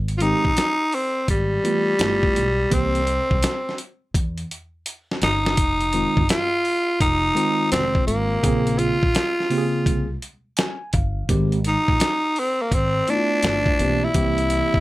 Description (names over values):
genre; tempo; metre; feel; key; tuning
hip hop, jazz-hop; 84 BPM; 4/4; swing 65% on 16ths; F minor; A4 = 440 Hz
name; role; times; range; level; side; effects
upright bass; bass; 0.0-14.8 s; F1 to E2; -25 LUFS; equal; none
dusty soul sampler-style drum kit; drums; 0.1-14.8 s; hi-hat, kick drum, snare drum; -23 LUFS; equal; none
growling tenor saxophone; melody; 0.2-14.8 s; G3 to F4; -21 LUFS; equal; none
mellow tine electric piano; accompaniment; 0.2-14.8 s; Db3 to Ab5; -24 LUFS; right 1 dB; medium stereo tremolo
room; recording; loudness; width
light reverb; none; -18 LUFS; side -18 dB against mid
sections
0.0-14.8 A section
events
drum fill 4.9-5.6; tine electric piano fill 10.2-11.3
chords
0.0 Abmaj7; 2.0 G13; 2.7 C7; 5.6 Fm7; 8.4 Bbm9; 11.3 Abmaj7; 13.4 G13; 14.1 C7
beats
0.58 1.29 2.00 | 2.72 3.43 4.15 4.86 | 5.58 6.29 7.00 7.72 | 8.43 9.15 9.86 10.58 | 11.29 12.01 12.72 13.43 | 14.15